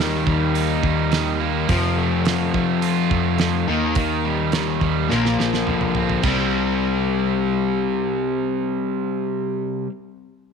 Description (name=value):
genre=classic rock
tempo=105 BPM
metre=4/4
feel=straight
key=C dorian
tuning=A4 = 440 Hz
part: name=distorted electric guitar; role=riff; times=0.0-9.9 s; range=Bb2 to F4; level=-24 LUFS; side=right 12 dB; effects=distortion
part: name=overdriven semi-hollow guitar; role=riff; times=0.0-9.9 s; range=F2 to Eb4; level=-22 LUFS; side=left 9 dB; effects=spring reverb
part: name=hollow-body short-scale picked electric bass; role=bass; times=0.0-9.8 s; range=Bb1 to F3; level=-26 LUFS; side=right 1 dB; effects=none
part: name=damped 70s drum kit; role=drums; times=0.0-6.4 s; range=crash cymbal, hi-hat, kick drum, snare drum, toms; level=-25 LUFS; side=right 4 dB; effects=none
room=light reverb, studio reverb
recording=1960s-style stereo with parts hard left and right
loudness=-18 LUFS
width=side -6 dB against mid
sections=0.0-6.2 A section; 6.2-8.5 B section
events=drum fill 5.1-6.2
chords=0.0 Eb; 1.7 F; 3.7 Eb; 5.1 Bbadd9; 6.2 C5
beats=0.55 1.12 | 1.69 2.25 2.82 3.39 | 3.96 4.53 5.10 5.67 | 6.24 6.81 7.38 7.95